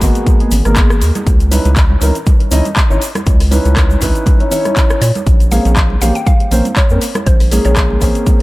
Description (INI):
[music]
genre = deep house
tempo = 120 BPM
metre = 4/4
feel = swing 55% on 16ths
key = unclear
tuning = A4 = 439 Hz
[part]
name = felt-muted upright piano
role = stabs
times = 0.0-8.4 s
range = G#3 to D#5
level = -18 LUFS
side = equal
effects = sidechain pumping, analog delay
[part]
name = round analog bass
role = bass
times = 0.0-8.1 s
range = G#1 to A#2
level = -13 LUFS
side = equal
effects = tube saturation, sidechain pumping
[part]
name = electronic kick drum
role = drums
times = 0.0-8.4 s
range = none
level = -12 LUFS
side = equal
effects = none
[part]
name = punchy analog drum machine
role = drums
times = 0.0-8.4 s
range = handclaps, hi-hat, rim click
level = -21 LUFS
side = left 1 dB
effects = overdrive, analog delay
[part]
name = congas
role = percussion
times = 0.0-8.4 s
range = none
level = -24 LUFS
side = right 3 dB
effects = none
[part]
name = tube shaker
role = percussion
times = 0.0-8.4 s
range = none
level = -27 LUFS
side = right 2 dB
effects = none
[part]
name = mallet-like synth pluck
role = melody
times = 5.0-8.1 s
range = B#4 to G5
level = -24 LUFS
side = equal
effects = chorus, cassette tape, dub echo
[sound]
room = light reverb, studio ambience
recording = echo-heavy mix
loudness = -10 LUFS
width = side -19 dB against mid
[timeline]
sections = 0.0-8.4 A section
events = none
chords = 0.0 G#m9; 1.3 C#m9; 5.0 A#m9